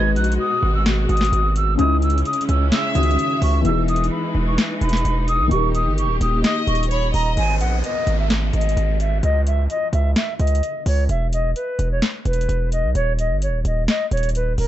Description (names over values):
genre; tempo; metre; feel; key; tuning
hip hop, trap; 129 BPM; 4/4; half-time; G# minor; A4 = 443 Hz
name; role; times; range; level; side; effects
silver concert flute; melody; 0.0-14.7 s; A#4 to G#6; -24 LUFS; equal; low-pass filter
felt-muted upright piano; accompaniment; 0.0-7.4 s; C#3 to B4; -26 LUFS; left 4 dB; low-pass filter
clear symphonic string section; sustained chords; 0.0-7.4 s; B2 to G4; -27 LUFS; right 1 dB; none
distorted 808-style bass; bass; 0.0-14.7 s; D#1 to C#2; -19 LUFS; equal; distortion
booming analog drum machine; drums; 0.2-14.7 s; hi-hat, snare drum; -24 LUFS; left 1 dB; overdrive
warm studio violin section; second line; 2.7-3.6, 6.4-7.4 s; C#5 to E5; -28 LUFS; right 1 dB; ping-pong delay
downlifter; sound effects; 7.4-11.1 s; none; -31 LUFS; right 1 dB; none
room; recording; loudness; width
little or no reverb; dark, warm production, nothing above 8.0 kHz; -17 LUFS; side -12 dB against mid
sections
0.0-7.4 A section; 7.4-14.7 B section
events
none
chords
0.0 G#m7; 1.8 C#madd9; 3.6 Emaj7; 5.5 D#; 7.4 G#5; 9.2 C#sus2; 11.1 E5; 13.0 N.C.